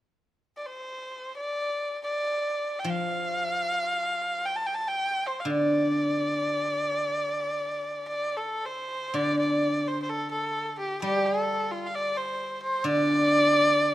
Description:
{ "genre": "chinese traditional, Chinese chamber ensemble", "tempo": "free time", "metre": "none", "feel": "none", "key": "D yu mode", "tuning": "A4 = 440 Hz", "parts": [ { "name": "clear erhu", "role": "melody", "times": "0.6-13.9 s", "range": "F4 to A5", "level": "-26 LUFS", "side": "equal", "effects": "none" }, { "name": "guzheng", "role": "accompaniment", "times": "2.8-13.9 s", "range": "D3 to G3", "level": "-28 LUFS", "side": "equal", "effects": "none" } ], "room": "moderate recital hall reverb, RT60 1.7 s", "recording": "close, detailed microphones", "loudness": "-25 LUFS", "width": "side -14 dB against mid", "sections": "0.0-9.2 A section; 9.2-13.9 B section", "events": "none", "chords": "none" }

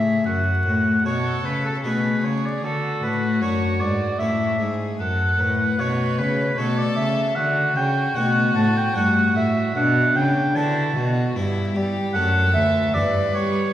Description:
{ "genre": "classical, baroque-style sonata movement with continuo", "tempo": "76 BPM", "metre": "3/4", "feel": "straight", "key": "D major from 7.4 s", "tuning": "A4 = 441 Hz", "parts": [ { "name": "rich violin", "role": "melody", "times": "0.0-13.7 s", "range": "D4 to B4", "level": "-29 LUFS", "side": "left 3 dB", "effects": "none" }, { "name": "warm oboe", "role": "second line", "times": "0.0-13.7 s", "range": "A4 to A5", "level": "-22 LUFS", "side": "right 1 dB", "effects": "none" }, { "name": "harpsichord", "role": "accompaniment", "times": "0.0-13.7 s", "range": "D2 to A4", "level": "-26 LUFS", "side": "left 3 dB", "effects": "none" }, { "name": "rich cello", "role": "bass", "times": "0.0-13.7 s", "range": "D2 to G3", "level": "-23 LUFS", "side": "equal", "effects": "none" } ], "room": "wet concert hall reverb, RT60 2.0 s", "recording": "heard from further back in the room, vinyl crackle", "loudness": "-18 LUFS", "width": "side -12 dB against mid", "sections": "0.0-13.7 A section", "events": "none", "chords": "0.3 F#m; 2.6 D; 4.2 A; 5.0 F#m; 7.4 D; 9.8 Bm; 11.3 Em/G; 12.1 D/F#; 12.9 Em7/G" }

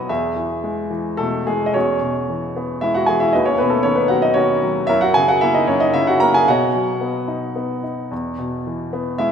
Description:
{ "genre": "classical, lyrical solo piano", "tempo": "103-120 BPM", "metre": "3/4", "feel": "rubato", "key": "E major", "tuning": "A4 = 444 Hz", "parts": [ { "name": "warm baby grand piano", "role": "solo", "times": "0.0-9.3 s", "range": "D#2 to A#5", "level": "-16 LUFS", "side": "equal", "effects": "none" } ], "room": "wet concert hall reverb, RT60 2.3 s", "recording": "minimal, uncompressed stereo recording", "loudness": "-16 LUFS", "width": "side -7 dB against mid", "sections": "0.0-1.8 A section; 1.8-9.3 B section", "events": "none", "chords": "0.1 E; 1.8 Eadd9; 3.3 Badd9/D#; 4.9 F#7; 6.5 Badd9; 8.1 E5" }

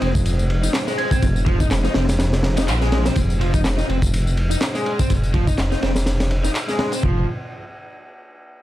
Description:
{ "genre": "breakbeat, breaks", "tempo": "124 BPM", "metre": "4/4", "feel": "swing 56% on 16ths", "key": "F minor", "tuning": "A4 = 440 Hz", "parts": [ { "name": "deep dark ambient pad", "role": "sustained chords", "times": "0.0-3.1 s", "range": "Ab3 to C5", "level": "-33 LUFS", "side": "right 1 dB", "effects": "none" }, { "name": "raw garage guitar", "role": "riff", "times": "0.0-7.3 s", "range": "F3 to Eb4", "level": "-26 LUFS", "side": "left 1 dB", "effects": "overdrive, tube saturation, low-pass filter, tape echo" }, { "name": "dark detuned saw bass", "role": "bass", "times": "0.0-7.3 s", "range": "F1 to Bb1", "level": "-20 LUFS", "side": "equal", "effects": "none" }, { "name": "crunchy breakbeat drum kit", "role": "drums", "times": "0.0-7.2 s", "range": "kick drum, ride cymbal, snare drum", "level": "-22 LUFS", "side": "equal", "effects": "none" }, { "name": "electronic tambourine and handclaps", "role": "drums", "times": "0.1-7.0 s", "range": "none", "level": "-30 LUFS", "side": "left 1 dB", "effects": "none" }, { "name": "soft synth bell", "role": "melody", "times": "1.0-1.2 s", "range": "Ab6", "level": "-31 LUFS", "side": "right 4 dB", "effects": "chorus, phaser, small speaker sound, tape echo" } ], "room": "light reverb", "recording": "dark, warm production", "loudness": "-17 LUFS", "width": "side -15 dB against mid", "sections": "0.0-3.2 A section; 3.2-7.0 B section; 7.0-8.6 C section", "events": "drop 0.0-3.2; band accent 2.7; filter sweep on detuned saw bass 3.2-7.0", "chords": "0.0 Fm; 3.2 N.C." }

